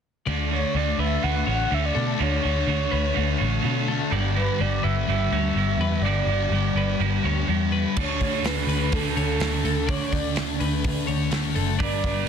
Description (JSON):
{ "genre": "rock, shoegaze and dream pop", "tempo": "125 BPM", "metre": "4/4", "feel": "straight", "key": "D major", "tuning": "A4 = 442 Hz", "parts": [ { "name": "twelve-string electric guitar", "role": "arpeggios", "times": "0.3-12.3 s", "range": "D4 to D5", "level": "-33 LUFS", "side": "left 6 dB", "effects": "wide subtle chorus, analog delay" }, { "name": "biting overdriven guitar", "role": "riff", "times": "0.3-12.3 s", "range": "G2 to B4", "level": "-28 LUFS", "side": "right 14 dB", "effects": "reverse reverb" }, { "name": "thick fuzz guitar", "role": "riff", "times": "0.3-12.3 s", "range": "G2 to D4", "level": "-28 LUFS", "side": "left 10 dB", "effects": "distortion, lush chorus" }, { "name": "vintage muted picked electric bass", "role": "bass", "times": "0.3-12.3 s", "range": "F#1 to B2", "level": "-26 LUFS", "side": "equal", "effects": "none" }, { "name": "mellow horn-like synth lead", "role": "melody", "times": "0.5-12.3 s", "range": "A4 to F#5", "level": "-30 LUFS", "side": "right 1 dB", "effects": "chorus, analog delay" }, { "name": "loose indie drum kit", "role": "drums", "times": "8.0-12.2 s", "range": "crash cymbal, hi-hat, kick drum, snare drum", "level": "-28 LUFS", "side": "right 1 dB", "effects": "none" } ], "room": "light reverb, small room ambience", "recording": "dense, heavily limited modern master", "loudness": "-21 LUFS", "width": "side -7 dB against mid", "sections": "0.3-8.0 A section; 8.0-12.3 B section", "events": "none", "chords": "0.3 Dmaj7; 4.1 G6; 8.0 Dmaj7", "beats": "| 0.27 0.76 1.24 1.72 | 2.20 2.68 3.17 3.65 | 4.13 4.61 5.09 5.57 | 6.05 6.53 7.01 7.49 | 7.97 8.45 8.93 9.41 | 9.89 10.37 10.85 11.32 | 11.80 12.28" }